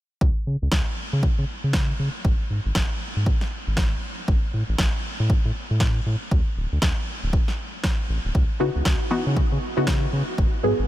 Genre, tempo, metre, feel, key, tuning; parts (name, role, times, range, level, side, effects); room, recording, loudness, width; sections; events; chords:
deep house; 118 BPM; 4/4; swing 60% on 16ths; C# minor; A4 = 441 Hz
round analog bass; bass; 0.2-10.9 s; D1 to C#3; -24 LUFS; equal; sidechain pumping
electronic kick drum; drums; 0.2-10.5 s; -22 LUFS; equal
electronic snare drum; drums; 0.7-10.0 s; -30 LUFS; equal
filtered dub chord stab; stabs; 8.6-10.9 s; E3 to G#4; -24 LUFS; left 1 dB; phaser, sidechain pumping, ping-pong delay
light reverb, digital ambience; -21 LUFS; side -14 dB against mid
0.2-10.9 A section
filter sweep on analog synth bass 0.2-10.9
0.2 N.C.; 6.3 D5; 8.3 C#m11